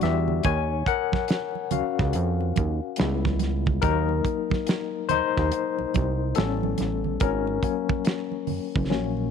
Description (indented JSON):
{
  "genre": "R&B, neo-soul",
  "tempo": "71 BPM",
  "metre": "4/4",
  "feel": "swing 62% on 16ths",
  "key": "unclear",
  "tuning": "A4 = 440 Hz",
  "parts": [
    { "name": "barky tine electric piano", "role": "accompaniment", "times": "0.0-9.3 s", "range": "Gb3 to Ab5", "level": "-26 LUFS", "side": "left 12 dB", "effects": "overdrive, fast tremolo" },
    { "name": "fat analog bass", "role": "bass", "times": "0.0-9.3 s", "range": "Gb1 to F2", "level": "-26 LUFS", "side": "right 3 dB", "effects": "none" },
    { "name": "damped 70s drum kit", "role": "drums", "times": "0.0-9.1 s", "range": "hi-hat, kick drum, snare drum", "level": "-26 LUFS", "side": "right 2 dB", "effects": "none" },
    { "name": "congas", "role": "percussion", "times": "0.0-9.3 s", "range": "none", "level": "-32 LUFS", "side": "right 18 dB", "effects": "none" }
  ],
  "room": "studio ambience",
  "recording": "1960s-style stereo with parts hard left and right",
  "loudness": "-23 LUFS",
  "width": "side -7 dB against mid",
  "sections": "0.0-9.3 A section",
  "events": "tine electric piano solo 0.0-9.3; drum fill 8.9-9.3",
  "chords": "0.4 Ebm9; 3.0 C#m7b5; 3.8 Cm7b5/Eb; 6.4 A9; 7.2 Ab9sus4",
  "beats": "| 0.45 1.29 2.13 2.98 | 3.83 4.67 5.51 6.36 | 7.21 8.05 8.90"
}